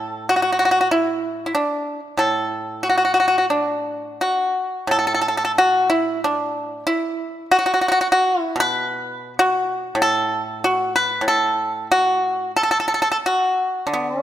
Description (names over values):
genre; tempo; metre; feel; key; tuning
chinese traditional, Chinese solo plucked strings; 83-98 BPM; 4/4; rubato; unclear; A4 = 439 Hz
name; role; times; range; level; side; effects
pipa; solo; 0.0-14.2 s; A2 to B4; -18 LUFS; equal; none
room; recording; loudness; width
moderate concert hall reverb, RT60 1.8 s; none; -17 LUFS; side -12 dB against mid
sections
0.0-4.9 A section; 4.9-14.2 B section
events
none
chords
none